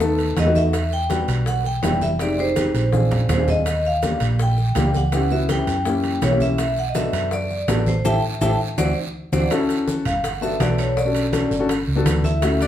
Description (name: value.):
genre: Afro-Cuban jazz.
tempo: 164 BPM.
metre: 4/4.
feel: straight.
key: unclear.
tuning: A4 = 440 Hz.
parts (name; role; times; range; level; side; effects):
warm upright piano; accompaniment; 0.0-12.7 s; G3 to A4; -24 LUFS; left 3 dB; none.
hollow-body short-scale fingered electric bass; bass; 0.0-12.7 s; F1 to F#2; -22 LUFS; right 1 dB; none.
bongos; percussion; 0.0-12.6 s; none; -32 LUFS; left 3 dB; none.
congas; percussion; 0.0-12.7 s; none; -28 LUFS; equal; none.
guiro; percussion; 0.0-12.7 s; none; -38 LUFS; right 5 dB; none.
maracas; percussion; 0.0-12.7 s; none; -39 LUFS; left 4 dB; none.
timbales; percussion; 0.2-12.7 s; none; -31 LUFS; right 7 dB; none.
vibraphone with medium hard mallets; melody; 0.4-12.7 s; D4 to A5; -24 LUFS; equal; none.
room: wet club reverb, RT60 0.7 s.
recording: heard from further back in the room, faint mains hum.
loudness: -18 LUFS.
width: side -11 dB against mid.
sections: 0.0-9.5 A section; 9.5-12.7 B section.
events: drum fill 2.9-3.7, 9.0-9.5; band accent 8.0-9.5; vibraphone solo 9.5-12.7.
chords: 0.0 B7; 0.7 Em9; 2.2 Fm7; 2.9 Bb7; 3.7 Ebmaj9; 5.1 C#m7b5; 5.9 F#7b9; 6.6 Bm7; 8.0 A5; 8.8 D7; 9.5 A6; 10.2 Gmaj7; 11.0 Bm7; 11.7 Gmaj7.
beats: 0.01 0.37 | 0.74 1.10 1.47 1.83 | 2.20 2.56 2.93 3.30 | 3.66 4.03 4.39 4.76 | 5.12 5.49 5.86 6.22 | 6.59 6.95 7.32 7.68 | 8.05 8.41 8.78 9.14 | 9.51 9.88 10.24 10.60 | 10.97 11.33 11.70 12.06 | 12.43.